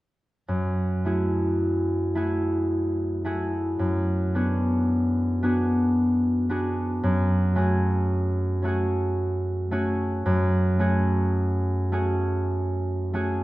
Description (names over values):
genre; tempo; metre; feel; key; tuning
classical; 55 BPM; 3/4; rubato; F# minor; A4 = 440 Hz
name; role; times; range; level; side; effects
concert harp; accompaniment; 0.5-13.4 s; F#2 to G#4; -22 LUFS; equal; none
room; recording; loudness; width
wet recital hall reverb, RT60 1.6 s; none; -22 LUFS; side -17 dB against mid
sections
0.5-13.4 A section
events
none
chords
0.5 F#m9; 3.8 Bm6/F#; 7.0 F#madd9